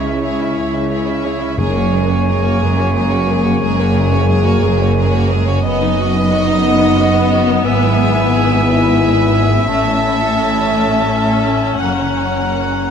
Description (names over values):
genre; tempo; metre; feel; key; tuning
cinematic, emotional film score for orchestra; 59 BPM (dotted quarters); 6/8; rubato; unclear; A4 = 440 Hz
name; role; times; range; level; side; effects
warm studio violin section; melody; 0.0-12.9 s; A#4 to F#5; -22 LUFS; equal; none
dark clarinet; second line; 0.0-12.9 s; G#3 to C#4; -24 LUFS; left 1 dB; none
rich studio violin section; second line; 0.0-12.9 s; A3 to B4; -26 LUFS; equal; none
silver concert flute; second line; 0.0-12.9 s; E5 to A#5; -24 LUFS; left 3 dB; none
warm oboe; second line; 0.0-12.9 s; C#5 to F#5; -24 LUFS; right 2 dB; none
rich studio viola section; accompaniment; 0.0-12.9 s; G#3 to E4; -23 LUFS; left 3 dB; none
mellow French horn section; sustained chords; 0.0-12.9 s; G#3 to G#4; -21 LUFS; left 4 dB; none
concert harp; arpeggios; 0.0-12.9 s; F#2 to B5; -23 LUFS; left 7 dB; none
rich studio cello section; bass; 0.0-12.9 s; F#2 to C#3; -20 LUFS; right 2 dB; none
rich studio double bass section; bass; 0.0-12.9 s; F#1 to C#2; -19 LUFS; right 3 dB; none
timpani; percussion; 1.6-2.6 s; F#2; -24 LUFS; equal; none
room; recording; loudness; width
moderate scoring stage reverb, RT60 1.7 s; none; -12 LUFS; side -7 dB against mid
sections
0.0-12.9 A section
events
none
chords
0.0 C#m; 1.6 F#add9; 5.6 B/F#; 7.7 E/G#; 9.7 A; 11.8 F#